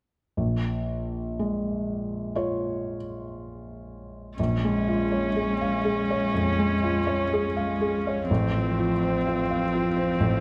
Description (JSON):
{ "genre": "neoclassical piano and strings", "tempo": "56-64 BPM", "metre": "4/4", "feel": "rubato", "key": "Bb minor", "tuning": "A4 = 439 Hz", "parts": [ { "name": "felt-muted upright piano", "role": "accompaniment", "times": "0.4-10.4 s", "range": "A1 to F5", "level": "-28 LUFS", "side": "equal", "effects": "none" }, { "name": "dark cello", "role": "second line", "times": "4.4-10.4 s", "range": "F3 to Ab3", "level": "-32 LUFS", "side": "equal", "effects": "none" }, { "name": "warm viola", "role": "accompaniment", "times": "4.4-10.4 s", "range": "C4 to Db4", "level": "-32 LUFS", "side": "equal", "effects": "none" } ], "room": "moderate recital hall reverb, RT60 1.5 s", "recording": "none", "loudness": "-26 LUFS", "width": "mono", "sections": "0.4-4.4 A section; 4.4-10.4 B section", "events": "none", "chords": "0.4 Bbm7; 8.3 F/A", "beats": "| 0.37 1.38 2.35 3.34 | 4.38 5.37 6.34 7.32 | 8.29 9.26 10.20" }